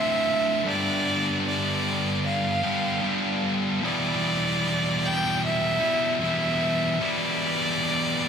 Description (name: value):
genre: rock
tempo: 76 BPM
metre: 4/4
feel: straight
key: unclear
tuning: A4 = 437 Hz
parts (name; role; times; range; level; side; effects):
- rich fiddle; melody; 0.0-8.3 s; D5 to G5; -26 LUFS; right 1 dB; ping-pong delay
- thick fuzz guitar; riff; 0.0-8.3 s; D2 to G4; -24 LUFS; equal; distortion
room: moderate huge ambient reverb, RT60 3.9 s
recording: dreamy mix soaked in reverb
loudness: -22 LUFS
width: side -7 dB against mid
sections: 0.0-8.3 A section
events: none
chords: 0.0 Dm7; 0.7 G7; 3.8 Em7